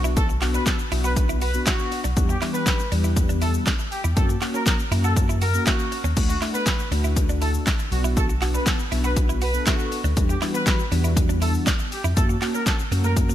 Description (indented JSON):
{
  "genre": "dance-pop",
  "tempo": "120 BPM",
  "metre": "4/4",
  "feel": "straight",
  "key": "B minor",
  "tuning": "A4 = 440 Hz",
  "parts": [
    { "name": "mellow synth brass", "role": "accompaniment", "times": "0.0-13.3 s", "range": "E3 to A4", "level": "-28 LUFS", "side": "left 2 dB", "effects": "chorus, sidechain pumping" },
    { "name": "direct-recorded clean electric guitar", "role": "riff", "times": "0.0-13.3 s", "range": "A3 to F#4", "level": "-33 LUFS", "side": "right 5 dB", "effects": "wide subtle chorus" },
    { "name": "mellow tine electric piano", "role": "bass", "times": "0.0-13.3 s", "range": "B1 to F#2", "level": "-23 LUFS", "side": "equal", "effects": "medium stereo tremolo, sidechain pumping" },
    { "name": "punchy analog drum machine", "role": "drums", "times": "0.0-13.3 s", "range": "crash cymbal, handclaps, hi-hat, kick drum, shaker, snare drum", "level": "-23 LUFS", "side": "equal", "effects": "none" },
    { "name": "warm horn section", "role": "melody", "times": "0.2-13.1 s", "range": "F#4 to B4", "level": "-29 LUFS", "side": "equal", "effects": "sidechain pumping" }
  ],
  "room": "light reverb, digital ambience",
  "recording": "bright 1980s-style digital production",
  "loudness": "-20 LUFS",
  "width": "side -12 dB against mid",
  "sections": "0.0-6.2 A section; 6.2-13.3 A section",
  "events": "drop 0.0-6.2, 6.2-13.3",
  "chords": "0.0 Bm; 2.2 Em7; 4.2 F#; 6.2 D; 7.9 Bm; 10.2 Em7; 12.2 F#"
}